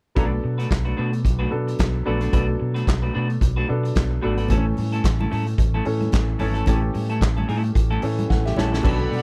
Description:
disco; 111 BPM; 4/4; swing 56% on 16ths; B minor; A4 = 440 Hz
clear concert grand piano; accompaniment; 0.2-9.2 s; E3 to F#5; -30 LUFS; equal
semi-hollow electric guitar; accompaniment; 0.2-9.1 s; F#3 to B4; -30 LUFS; equal
fingered electric bass with an envelope filter; bass; 0.2-9.2 s; G#1 to B2; -26 LUFS; equal
vintage drum kit; drums; 0.2-9.2 s; crash cymbal, handclaps, hi-hat, kick drum, snare drum; -25 LUFS; equal
congas; percussion; 4.5-9.2 s; -35 LUFS; equal
warm studio string section; sustained chords; 8.8-9.2 s; A4 to B5; -31 LUFS; equal
little or no reverb; -22 LUFS; mono
0.2-8.8 A section
drum fill 8.3-8.8
0.2 Bm7; 4.5 A

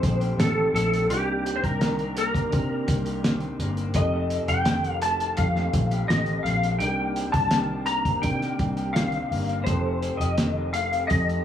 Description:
indie pop, bedroom pop; 84 BPM; 4/4; straight; C dorian; A4 = 440 Hz
clean lap steel guitar; melody; 0.0-11.4 s; G4 to Bb5; -26 LUFS; left 1 dB; ensemble chorus, slapback echo
electric guitar through a small old amp; accompaniment; 0.0-11.4 s; F2 to G4; -32 LUFS; left 4 dB; wide subtle chorus, vibrato effect
soft electric-piano-like synth keys; accompaniment; 0.0-11.4 s; C4 to C5; -33 LUFS; right 3 dB; chorus, tremolo, cassette tape
vintage muted picked electric bass; bass; 0.0-11.4 s; F1 to C3; -27 LUFS; equal
cloth-damped thuddy drum kit; drums; 0.0-11.4 s; hi-hat, kick drum, snare drum; -27 LUFS; equal
moderate small room reverb, RT60 0.5 s; -22 LUFS; side -10 dB against mid
0.0-11.4 A section
0.0 F9; 1.1 Cm7; 4.0 F9; 6.8 Cm7; 9.7 F9

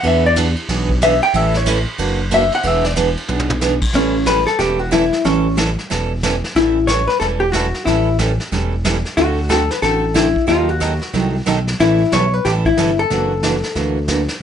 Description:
country, western swing; 184 BPM; 4/4; swing 63% on 8ths; A mixolydian; A4 = 440 Hz
vintage hollow-body jazz guitar; melody; 0.0-14.3 s; C#4 to G5; -16 LUFS; left 3 dB
picked steel-string acoustic guitar; accompaniment; 0.0-14.2 s; D3 to A4; -21 LUFS; right 5 dB
smooth synth bass; bass; 0.0-14.3 s; E1 to E2; -20 LUFS; equal
vintage brush drum kit; drums; 0.0-14.4 s; brushed snare drum, crash cymbal, hi-hat, kick drum, ride cymbal, snare drum, toms; -23 LUFS; equal
light reverb; nothing above 10.8 kHz; -14 LUFS; side -8 dB against mid
0.0-3.9 A section; 3.9-14.4 B section
hollow-body jazz guitar solo 0.0-3.9; drum fill 3.3-3.6
0.0 E7; 1.3 A7; 2.0 F#aug7; 2.6 E7; 3.9 A7; 9.2 D9; 10.5 D#dim7; 11.8 A9; 13.1 F#7alt

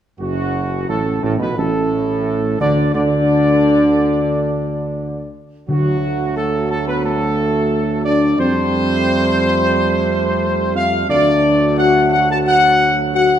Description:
classical; 88 BPM; 4/4; straight; D major; A4 = 440 Hz
mellow trumpet section; melody; 0.2-13.4 s; F#4 to A5; -18 LUFS; equal
bright trombone section; sustained chords; 0.2-13.4 s; F#2 to A3; -23 LUFS; right 3 dB
dark French horn section; sustained chords; 0.2-13.4 s; F#3 to A4; -21 LUFS; left 4 dB
dark tuba; bass; 0.2-13.4 s; F#1 to F2; -20 LUFS; right 3 dB
timpani; percussion; 5.7-6.7 s; D3; -20 LUFS; left 1 dB
wet recital hall reverb, RT60 1.6 s; -14 LUFS; side -10 dB against mid
0.2-13.4 A section
0.2 D/F#; 2.9 N.C.; 5.7 D; 8.4 Fadd9; 11.1 D

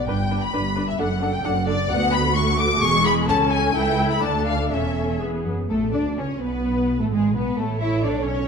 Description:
quick classical-period movement for string orchestra; 129 BPM; 2/4; rubato; A major; A4 = 440 Hz
rich studio violin section; melody; 0.0-8.5 s; G#4 to D6; -26 LUFS; left 4 dB
warm studio violin section; second line; 0.0-8.5 s; G#4 to D6; -27 LUFS; left 4 dB
warm studio cello section; bass; 0.0-8.5 s; C#2 to E4; -25 LUFS; equal
warm studio viola section; accompaniment; 0.1-8.5 s; G#3 to C#5; -26 LUFS; right 1 dB
warm studio double bass section; bass; 0.1-8.5 s; E1 to D2; -26 LUFS; right 3 dB
moderate scoring stage reverb, RT60 1.6 s; dark, warm production; -19 LUFS; side -6 dB against mid
0.0-5.7 A section; 5.7-8.5 B section
0.1 G; 1.0 D/F#; 1.9 Bm/D; 2.8 E; 3.3 A/C#; 3.8 A7/C#; 4.2 Dm; 4.7 A/E; 5.2 E; 5.7 A; 6.6 G#m; 7.6 A

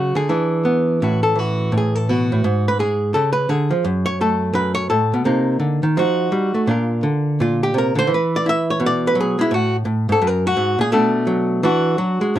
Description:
solo jazz; 169 BPM; 4/4; swing 64% on 8ths, rubato; A major; A4 = 440 Hz
archtop guitar, miked and amplified; solo; 0.0-12.4 s; F#2 to E5; -16 LUFS; equal
light reverb; dark, warm production; -16 LUFS; side -12 dB against mid
0.0-1.0 A section; 1.0-12.4 B section
hollow-body jazz guitar solo 1.0-12.4
0.3 E7; 1.0 A69; 2.4 N.C.; 3.1 C#; 3.8 F#m; 5.2 Cm9; 6.0 F7b9; 6.7 Bb; 8.1 Eadd9; 9.5 F#madd9; 10.2 F#; 10.9 Bm7; 11.6 E9

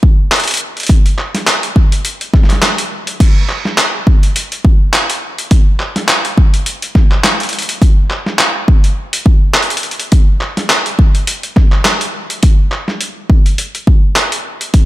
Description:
glitch hop; 104 BPM; 4/4; swing 56% on 16ths
electronic kick drum; drums; 0.0-14.9 s; -9 LUFS; equal; studio reverb
boom bap sampler-style drum kit; drums; 0.3-14.9 s; crash cymbal, handclaps, hi-hat, snare drum; -14 LUFS; equal; overdrive, studio reverb
light reverb, digital ambience; -10 LUFS; side -16 dB against mid
0.0-14.9 A section

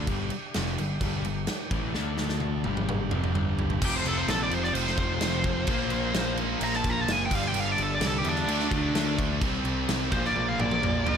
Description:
hard rock; 128 BPM; 4/4; straight; A4 = 439 Hz
overdriven tonewheel organ; sustained chords; 0.0-11.2 s; G3 to A5; -40 LUFS; equal; slow rotary speaker
overdriven semi-hollow guitar; riff; 0.0-11.2 s; F2 to D4; -34 LUFS; left 13 dB
sludgy distorted guitar; riff; 0.0-11.2 s; F2 to D4; -34 LUFS; right 12 dB; overdrive
modern bright picked electric bass; bass; 0.0-11.2 s; F1 to E2; -32 LUFS; equal
big rock drum kit; drums; 0.1-11.2 s; crash cymbal, kick drum, snare drum, toms; -30 LUFS; equal
heavy high-gain guitar; riff; 3.8-11.2 s; F2 to D4; -33 LUFS; equal; distortion
high-gain lead guitar; melody; 3.9-11.2 s; D4 to Bb5; -29 LUFS; equal; distortion, tape echo
little or no reverb; -24 LUFS; side -7 dB against mid
0.0-3.8 A section; 3.8-11.2 B section
drum fill 2.0-3.8, 10.4-11.2; lead electric guitar solo 3.8-11.2
0.1 G5; 2.0 D5; 2.7 G5; 3.8 F5; 5.7 Bb5; 7.3 G5; 8.5 D5; 9.4 C5; 10.1 Bb

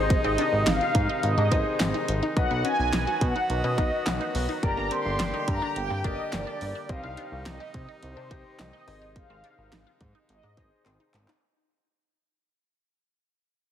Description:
synth-pop; 106 BPM; 4/4; straight; A4 = 439 Hz
mellow synth brass; melody; 0.0-10.8 s; C5 to C6; -29 LUFS; equal; chorus, analog delay
warm concert grand piano; accompaniment; 0.0-11.3 s; D4 to Eb5; -33 LUFS; left 4 dB
bright brass ensemble; sustained chords; 0.0-11.4 s; C3 to G4; -35 LUFS; right 2 dB
resonant blip pluck; arpeggios; 0.0-11.4 s; Bb3 to G4; -35 LUFS; equal; phaser, analog delay
chorused synth bass; bass; 0.0-11.3 s; G1 to C3; -29 LUFS; equal
pop drum kit; drums; 0.1-11.4 s; handclaps, hi-hat, kick drum, snare drum; -28 LUFS; equal
light reverb; heavily compressed radio sound, multiband compression; -23 LUFS; side -10 dB against mid
0.0-11.4 A section
fade-out 0.0-11.4; drum fill 10.9-11.4
0.0 Ab; 2.4 B; 4.6 Gm; 6.9 Cm; 8.9 Ab

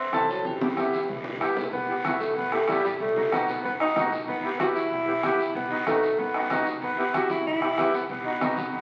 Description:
latin, cumbia; 188 BPM; 4/4; straight; E harmonic minor; A4 = 442 Hz
clean electric guitar; melody; 0.0-1.4 s; G4 to E5; -33 LUFS; equal; spring reverb
clear tenor saxophone; second line; 0.0-8.8 s; E3 to F#4; -29 LUFS; equal
upright bass; bass; 0.0-8.8 s; E1 to F#2; -50 LUFS; equal
accordion; accompaniment; 0.1-8.6 s; B3 to A4; -31 LUFS; equal
bombo; percussion; 0.1-8.8 s; -35 LUFS; equal
congas; percussion; 0.1-8.7 s; -37 LUFS; equal
guiro; percussion; 0.1-8.8 s; -42 LUFS; equal
wet large studio reverb, RT60 1.3 s; very old 78 rpm record, vinyl crackle; -26 LUFS; mono
0.0-1.7 A section; 1.7-8.8 B section
drum fill 0.5-1.7; tenor saxophone solo 1.7-8.8
0.5 Em; 3.0 B7; 4.3 Em; 5.5 B7; 6.8 Em; 8.1 B

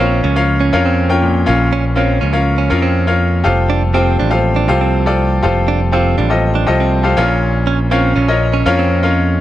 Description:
piano-driven pop; 121 BPM; 4/4; straight; A4 = 441 Hz
clear concert grand piano; accompaniment; 0.0-9.4 s; Bb2 to G5; -15 LUFS; left 2 dB
pipe organ, flutes; sustained chords; 0.0-9.4 s; F3 to G4; -23 LUFS; right 3 dB
direct-recorded clean electric guitar; riff; 0.0-9.0 s; C4 to D4; -20 LUFS; right 7 dB
modern bright picked electric bass; bass; 0.0-9.4 s; F1 to F2; -15 LUFS; equal
light reverb; -12 LUFS; side -13 dB against mid
0.0-9.4 A section
0.0 Bbm; 3.5 Fadd9; 7.2 Bbm

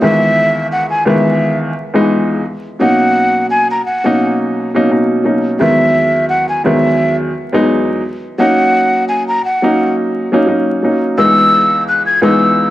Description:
hip hop; 86 BPM; 4/4; swing 56% on 16ths; C# dorian; A4 = 440 Hz
breathy mellow silver concert flute; melody; 0.0-12.7 s; E5 to G#6; -13 LUFS; equal; high-pass filter, low-pass filter
warm upright piano; accompaniment; 0.0-12.7 s; C#2 to D#4; -13 LUFS; equal; high-pass filter, low-pass filter
moderate plate reverb, RT60 2.7 s; dark, warm production, vinyl crackle; -11 LUFS; side -14 dB against mid
0.0-11.2 A section; 11.2-12.7 B section
0.0 C#m9; 2.8 Bmaj9; 5.6 Emaj9; 8.4 D#m7; 11.2 C#m9

